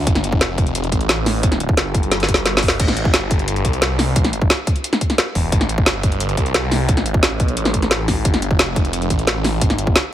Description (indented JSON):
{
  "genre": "dark technical drum and bass",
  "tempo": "176 BPM",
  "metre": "4/4",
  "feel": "straight",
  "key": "A minor",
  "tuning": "A4 = 436 Hz",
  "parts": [
    { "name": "phased detuned saw bass", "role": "bass", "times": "0.0-9.9 s", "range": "E1 to C2", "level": "-20 LUFS", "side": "equal", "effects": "phaser, tube saturation, sidechain pumping" },
    { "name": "drum and bass drum kit", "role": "drums", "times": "0.1-10.0 s", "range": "crash cymbal, hi-hat, snare drum", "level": "-18 LUFS", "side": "equal", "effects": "none" },
    { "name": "electronic kick drum", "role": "drums", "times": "0.1-9.9 s", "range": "none", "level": "-18 LUFS", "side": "equal", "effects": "none" }
  ],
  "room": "little or no reverb",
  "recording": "heavily compressed radio sound",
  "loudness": "-15 LUFS",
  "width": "side -12 dB against mid",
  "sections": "0.0-10.1 A section",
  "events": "drum fill 2.1-2.8",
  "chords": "none"
}